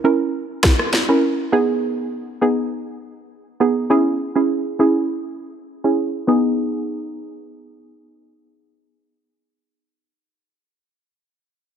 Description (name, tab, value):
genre	dancehall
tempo	101 BPM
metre	4/4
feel	straight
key	G# minor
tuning	A4 = 440 Hz
part	soft round pluck	accompaniment	0.0-10.1 s	B3 to A#4	-18 LUFS	right 2 dB	chorus, low-pass filter
part	island pop drum kit	drums	0.6-1.1 s	kick drum, rim click, snare drum	-16 LUFS	equal	overdrive
room	light reverb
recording	none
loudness	-17 LUFS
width	side -8 dB against mid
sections	0.0-6.3 A section; 6.3-8.7 B section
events	filter sweep on synth pluck 0.0-6.3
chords	0.0 A#dim; 1.5 G#m; 3.9 C#m; 6.3 G#m